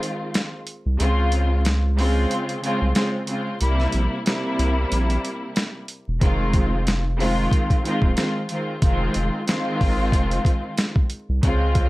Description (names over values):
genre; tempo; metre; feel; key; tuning
hip hop, boom-bap hip-hop; 92 BPM; 4/4; swing 56% on 16ths; F minor; A4 = 440 Hz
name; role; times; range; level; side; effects
rich studio string section; accompaniment; 0.0-11.9 s; C3 to F4; -24 LUFS; equal; cassette tape, high-pass filter, low-pass filter
boom bap sampler-style drum kit; drums; 0.0-11.9 s; hi-hat, kick drum, snare drum; -22 LUFS; equal; none
saturated sub bass; bass; 0.9-11.9 s; Eb1 to Db2; -21 LUFS; equal; none
room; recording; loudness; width
light reverb; vinyl crackle; -19 LUFS; side -19 dB against mid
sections
0.0-11.9 A section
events
break 0.0-6.2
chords
0.0 Fm7; 1.0 Dbmaj7; 3.6 C7; 6.2 Fm7